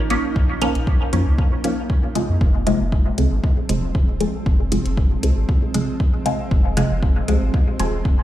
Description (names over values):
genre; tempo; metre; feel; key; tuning
dub techno; 117 BPM; 4/4; swing 53% on 16ths; unclear; A4 = 445 Hz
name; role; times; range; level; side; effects
granular cloud pad; sustained chords; 0.0-8.2 s; F3 to Eb4; -29 LUFS; right 2 dB; built-in reverb, sidechain pumping
soft dub sub bass; bass; 0.0-8.2 s; Eb1 to F2; -22 LUFS; equal; tube saturation, sidechain pumping
filtered dub chord stab; stabs; 0.1-7.9 s; C3 to Db4; -23 LUFS; equal; phaser, cassette tape, sidechain pumping, dub echo
electronic hi-hat; drums; 0.1-7.9 s; none; -30 LUFS; left 2 dB; overdrive, studio reverb
electronic kick drum; drums; 0.4-8.2 s; none; -20 LUFS; equal; overdrive, studio reverb
room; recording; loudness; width
light reverb; played on a big sound system in a bare room, large studio reverb; -17 LUFS; side -13 dB against mid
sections
0.0-8.2 A section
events
none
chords
0.0 Bbm; 2.4 Fm